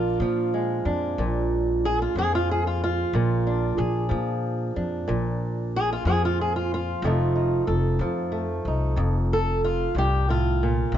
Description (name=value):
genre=acoustic country blues, solo or duo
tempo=62 BPM (dotted quarters)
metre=12/8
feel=straight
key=unclear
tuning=A4 = 440 Hz
part: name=fingerpicked old ladder-braced acoustic guitar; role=melody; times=0.0-11.0 s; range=F2 to A4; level=-24 LUFS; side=right 1 dB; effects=none
part: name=upright bass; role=bass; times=0.0-11.0 s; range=F1 to Bb2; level=-26 LUFS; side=left 1 dB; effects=none
room=light reverb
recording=nothing above 7.7 kHz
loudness=-22 LUFS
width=side -10 dB against mid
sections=0.0-11.0 A section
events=none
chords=0.0 Bb7; 7.0 F7